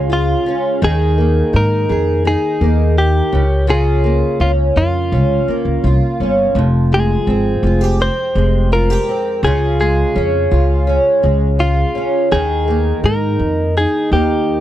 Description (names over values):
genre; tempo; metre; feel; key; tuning
acoustic pop; 84 BPM; 4/4; straight; unclear; A4 = 440 Hz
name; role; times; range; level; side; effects
direct-recorded clean electric guitar; melody; 0.0-14.6 s; F4 to C5; -19 LUFS; left 1 dB; none
fingerpicked twelve-string acoustic guitar; accompaniment; 0.0-14.6 s; F2 to Ab4; -18 LUFS; right 1 dB; double-tracked left and right
upright bass; bass; 0.0-14.6 s; F1 to Ab2; -15 LUFS; equal; none
room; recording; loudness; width
little or no reverb; dry, close 1970s-style studio recording; -12 LUFS; side -12 dB against mid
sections
0.0-14.6 A section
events
none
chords
0.0 Db; 0.8 Ebsus4; 3.3 Bbm/Db; 6.6 Fmadd9; 9.4 Db; 12.3 Ebsus4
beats
0.10 | 0.82 1.54 2.25 2.97 | 3.69 4.41 5.12 5.84 | 6.56 7.28 8.00 8.72 | 9.44 10.16 10.88 11.60 | 12.32 13.04 13.76 14.48